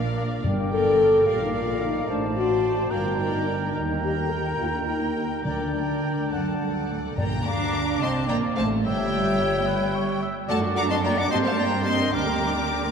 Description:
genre	quick classical-period movement for symphony orchestra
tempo	72 BPM (dotted quarters)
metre	6/8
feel	straight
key	G minor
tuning	A4 = 440 Hz
part	rich studio violin section	melody	0.0-12.9 s	D5 to D6	-33 LUFS	left 3 dB	none
part	rich chamber violin section	second line	0.0-12.9 s	D5 to Bb5	-35 LUFS	left 2 dB	none
part	rich chamber viola section	accompaniment	0.0-12.9 s	G3 to C5	-32 LUFS	right 1 dB	none
part	mellow French horn section	sustained chords	0.0-12.9 s	G3 to A4	-26 LUFS	left 2 dB	none
part	dark symphonic cello section	bass	0.0-12.9 s	D2 to D4	-30 LUFS	right 2 dB	none
part	warm chamber double bass section	bass	0.0-12.9 s	G1 to G2	-30 LUFS	right 3 dB	none
part	bright silver concert flute	second line	0.2-12.9 s	C5 to Bb5	-31 LUFS	left 1 dB	none
part	mellow clarinet	second line	0.2-6.9 s	Bb4 to D5	-37 LUFS	equal	none
part	warm oboe	second line	0.2-12.9 s	Bb4 to G5	-32 LUFS	right 1 dB	none
part	timpani	percussion	0.4-1.2, 5.5-8.0 s	G2 to D3	-32 LUFS	left 1 dB	none
room	wet church reverb, RT60 3.2 s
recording	dark, warm production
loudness	-21 LUFS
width	side -6 dB against mid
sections	0.0-7.2 A section; 7.2-12.9 B section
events	none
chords	0.4 Gm; 1.3 Bb; 2.1 D7/A; 2.9 Gm; 3.7 Eb; 5.5 Gm/D; 6.3 D; 7.2 Bbmaj13; 8.8 Em6/G; 10.5 D/F#; 11.3 Gm; 12.1 Gm/D

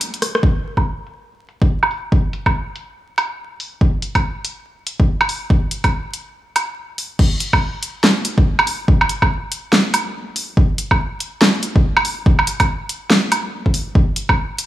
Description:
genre	dubstep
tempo	142 BPM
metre	4/4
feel	swing 61% on 16ths, half-time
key	none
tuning	none
part	deep house drum kit	drums	0.0-14.7 s	crash cymbal, hi-hat, rim click, snare drum, woodblock	-17 LUFS	right 1 dB	low-pass filter on hats, small room ambience, low-pass filter on snare, low-pass filter on perc, low-pass filter on cymbals
part	electronic kick drum	drums	0.4-14.4 s	none	-16 LUFS	equal	small room ambience
room	moderate echo chamber reverb, RT60 1.9 s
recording	vinyl crackle, small room reverb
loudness	-15 LUFS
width	side -14 dB against mid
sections	0.4-7.2 A section; 7.2-14.7 B section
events	break 0.0-0.4; drum fill 0.2; filter sweep on drum 0.4-7.2; drop 7.2-14.7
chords	none

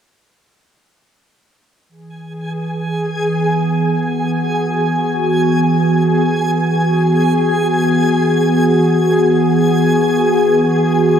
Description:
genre	ambient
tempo	free time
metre	none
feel	none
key	E major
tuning	A4 = 440 Hz
part	warbly tape-like pad	sustained chords	1.9-11.2 s	E3 to G#4	-14 LUFS	equal	chorus, built-in reverb
part	backwards swelling texture	texture	2.4-11.2 s	G#4 to G#5	-19 LUFS	equal	built-in reverb
room	wet huge ambient reverb, RT60 8.1 s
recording	dark, warm production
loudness	-13 LUFS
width	side -8 dB against mid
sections	1.9-11.2 A section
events	none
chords	1.9 Eadd9

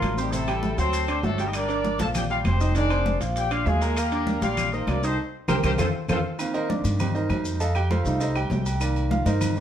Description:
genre	latin, salsa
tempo	198 BPM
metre	4/4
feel	straight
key	unclear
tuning	A4 = 439 Hz
part	clear horn section	melody	0.0-6.2 s	F3 to A5	-27 LUFS	left 2 dB	plate reverb
part	clear grand piano	accompaniment	0.0-9.6 s	C3 to Eb6	-28 LUFS	right 2 dB	none
part	upright bass	bass	0.0-9.6 s	F1 to G2	-26 LUFS	equal	none
part	claves	percussion	0.0-9.6 s	none	-39 LUFS	left 2 dB	none
part	congas	percussion	0.0-9.6 s	none	-30 LUFS	left 1 dB	none
part	maracas	percussion	0.0-9.6 s	none	-40 LUFS	left 3 dB	none
part	timbales and agogo bells	percussion	0.0-9.6 s	none	-36 LUFS	right 4 dB	none
room	wet studio reverb, RT60 0.9 s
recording	heard from further back in the room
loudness	-22 LUFS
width	side -10 dB against mid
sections	0.0-6.4 A section; 6.4-9.6 B section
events	drum fill 5.2-6.4; band accent 5.2-6.4; grand piano solo 6.4-9.6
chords	0.3 Am7; 0.9 D7; 1.5 Gm7; 2.8 Fm7; 3.4 Bb7; 4.0 Ebmaj7; 5.2 C5; 5.8 F; 6.4 Cm7; 7.6 F7; 8.8 Cm7

